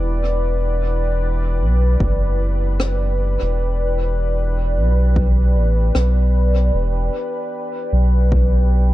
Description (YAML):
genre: ambient dub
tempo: 76 BPM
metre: 4/4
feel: swing 58% on 16ths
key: E minor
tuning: A4 = 440 Hz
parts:
  - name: deep dark ambient pad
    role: sustained chords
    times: 0.0-8.9 s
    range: E4 to G5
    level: -24 LUFS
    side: left 1 dB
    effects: chorus, built-in reverb
  - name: soft dub sub bass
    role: bass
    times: 0.0-8.9 s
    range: E1 to B1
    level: -16 LUFS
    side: equal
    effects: none
  - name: electronic kick drum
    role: drums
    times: 2.0-8.5 s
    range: none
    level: -22 LUFS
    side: equal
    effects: overdrive
  - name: rim click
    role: drums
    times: 2.8-6.1 s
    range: none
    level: -27 LUFS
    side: left 2 dB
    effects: dub echo
room: studio reverb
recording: echo-heavy mix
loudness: -16 LUFS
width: side -16 dB against mid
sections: 0.0-8.9 A section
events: none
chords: 0.0 Em9; 6.7 Em7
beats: | 0.43 1.22 2.01 2.79 | 3.58 4.37 5.16 5.95 | 6.74 7.53 8.32